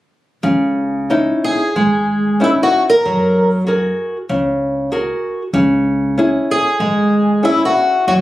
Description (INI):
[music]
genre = fado-style ballad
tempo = 94 BPM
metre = 4/4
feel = rubato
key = C# minor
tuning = A4 = 440 Hz
[part]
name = nylon-string guitar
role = accompaniment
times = 0.4-8.2 s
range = C#3 to A#4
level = -16 LUFS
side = equal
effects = none
[part]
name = upright bass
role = bass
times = 0.4-8.2 s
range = G#1 to F#2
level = -20 LUFS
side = right 1 dB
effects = none
[part]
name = fingerpicked twelve-string acoustic guitar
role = melody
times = 1.4-8.1 s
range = E4 to A#4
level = -14 LUFS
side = equal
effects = none
[sound]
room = light reverb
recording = recorded on a phone in the room, club ambience, compression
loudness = -13 LUFS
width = side -15 dB against mid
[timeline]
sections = 0.4-8.2 A section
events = none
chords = 0.4 C#madd9; 3.0 F#add9; 5.5 C#m